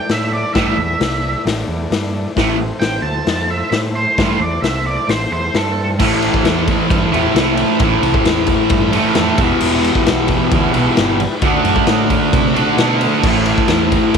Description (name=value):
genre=garage rock duo or trio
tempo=132 BPM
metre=4/4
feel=straight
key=A minor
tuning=A4 = 441 Hz
part: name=octave-fuzz lead guitar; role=melody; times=0.0-5.9 s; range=A4 to A5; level=-20 LUFS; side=right 3 dB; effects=distortion, tape echo
part: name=overdriven combo organ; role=sustained chords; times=0.0-14.2 s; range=E4 to D5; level=-26 LUFS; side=equal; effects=none
part: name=growling picked electric bass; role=bass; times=0.1-14.2 s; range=E1 to C3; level=-22 LUFS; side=right 2 dB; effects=overdrive
part: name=raw garage drum kit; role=drums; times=0.1-14.2 s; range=crash cymbal, hi-hat, kick drum, ride cymbal, snare drum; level=-18 LUFS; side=left 2 dB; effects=none
part: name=fuzz guitar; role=riff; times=0.6-14.2 s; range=E2 to D4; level=-15 LUFS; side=right 1 dB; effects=distortion
room=little or no reverb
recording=1960s-style stereo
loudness=-13 LUFS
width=side -6 dB against mid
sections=0.0-6.0 A section; 6.0-14.2 B section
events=none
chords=0.0 Am; 9.4 Em; 11.4 D; 13.2 Am